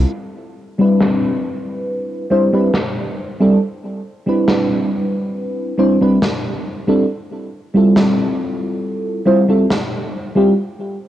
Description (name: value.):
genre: vaporwave.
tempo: 69 BPM.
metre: 4/4.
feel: straight.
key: C major.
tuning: A4 = 442 Hz.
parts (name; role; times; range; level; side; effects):
mellow FM electric piano; accompaniment; 0.0-10.5 s; G3 to C5; -15 LUFS; equal; phaser, analog chorus, cassette tape, tape echo.
snare drum; drums; 1.0-9.9 s; none; -22 LUFS; equal; low-pass filter on hats, low-pass filter on snare, low-pass filter on room.
room: light reverb, small room ambience.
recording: home recording on cassette.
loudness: -14 LUFS.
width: side -12 dB against mid.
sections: 0.1-11.1 A section.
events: none.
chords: 0.1 Cmaj9; 7.1 Fmaj9.